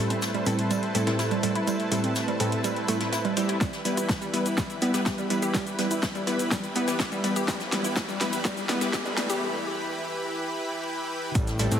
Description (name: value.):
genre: progressive house.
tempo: 124 BPM.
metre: 4/4.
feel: straight.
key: unclear.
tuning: A4 = 440 Hz.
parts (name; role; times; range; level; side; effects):
supersaw pad; sustained chords; 0.0-11.8 s; E3 to B5; -32 LUFS; equal; sidechain pumping, low-pass filter.
glassy wavetable pluck; arpeggios; 0.0-11.8 s; G3 to G4; -30 LUFS; right 2 dB; chorus, sidechain pumping, ping-pong delay.
wide unison pluck; stabs; 0.0-11.7 s; A2 to B4; -29 LUFS; left 1 dB; sidechain pumping, ping-pong delay.
deep house drum kit; drums; 0.1-11.8 s; cabasa, hi-hat, snare drum; -31 LUFS; equal; sidechain pumping on hats, sidechain pumping on perc.
shaker and snare drum; drums; 0.2-11.7 s; none; -39 LUFS; left 2 dB; none.
electronic kick drum; drums; 3.6-11.4 s; none; -29 LUFS; equal; overdrive.
riser; sound effects; 5.8-9.4 s; none; -39 LUFS; left 1 dB; none.
fat analog bass; bass; 11.4-11.8 s; A1 to A2; -26 LUFS; equal; sidechain pumping.
room: wet recital hall reverb, RT60 1.5 s.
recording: heavily compressed radio sound, high-pass filter.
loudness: -24 LUFS.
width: side -9 dB against mid.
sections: 0.0-11.4 A section.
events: build-up 0.0-11.4; filter sweep on synth arpeggio sound 0.0-11.4; drum fill 3.6-9.4; break 9.4-11.4.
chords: 0.0 Am7; 3.6 Em.